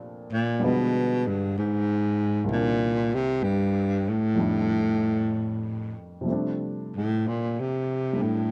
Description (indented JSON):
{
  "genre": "jazz ballad",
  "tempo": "64 BPM",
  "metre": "4/4",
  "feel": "swing 67% on 8ths",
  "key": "Bb major",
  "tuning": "A4 = 442 Hz",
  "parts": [
    { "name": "warm baby grand piano", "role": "accompaniment", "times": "0.0-8.5 s", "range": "C2 to Bb4", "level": "-34 LUFS", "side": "equal", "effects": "none" },
    { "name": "breathy baritone saxophone", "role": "melody", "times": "0.3-8.5 s", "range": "G2 to C3", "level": "-26 LUFS", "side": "equal", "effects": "none" }
  ],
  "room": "moderate club reverb, RT60 0.7 s",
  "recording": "dark, warm production",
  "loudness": "-26 LUFS",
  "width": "mono",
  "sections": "0.0-6.3 A section; 6.3-8.5 B section",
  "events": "baritone saxophone solo 6.3-8.5",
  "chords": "0.0 Bbmaj13; 0.6 G7b9; 2.5 Cm7; 4.4 F13; 6.3 Bbmaj13 (rootless)",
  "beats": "0.61 1.55 | 2.49 3.43 4.37 5.32 | 6.26 7.20 8.14"
}